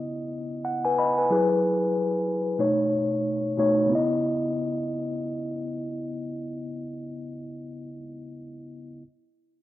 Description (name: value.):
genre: hip hop.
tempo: 92 BPM.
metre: 4/4.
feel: swing 59% on 16ths.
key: C# minor.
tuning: A4 = 439 Hz.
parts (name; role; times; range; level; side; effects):
mellow tine electric piano; accompaniment; 0.0-9.0 s; B2 to B5; -25 LUFS; left 1 dB; slow stereo tremolo, high-pass filter, low-pass filter.
room: moderate studio reverb, RT60 0.5 s.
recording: lossy compression artefacts.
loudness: -23 LUFS.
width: side -14 dB against mid.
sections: 0.0-3.9 A section; 3.9-6.5 B section.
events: filter sweep on tine electric piano 0.0-3.9.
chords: 0.0 C#m9; 1.3 F#9sus4; 2.6 B9; 3.9 C#m9.